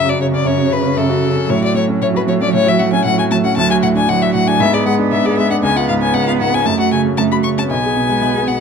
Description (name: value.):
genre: quick classical-period movement for piano trio.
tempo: 116 BPM.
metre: 4/4.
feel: rubato.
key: F# minor.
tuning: A4 = 440 Hz.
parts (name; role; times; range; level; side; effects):
clear violin; melody; 0.0-8.6 s; A4 to C#6; -17 LUFS; left 8 dB; none.
rich cello; second line; 0.0-8.6 s; C#3 to B3; -18 LUFS; right 10 dB; none.
warm baby grand piano; accompaniment; 0.0-8.6 s; B1 to G#4; -16 LUFS; left 1 dB; none.
room: light reverb.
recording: dark, warm production.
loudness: -12 LUFS.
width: side -6 dB against mid.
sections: 0.0-8.6 A section.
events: none.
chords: 0.0 F#m; 1.5 F#m/A; 3.6 D; 4.6 G#dim; 5.6 C#7; 6.7 F#m; 7.7 G#m/B.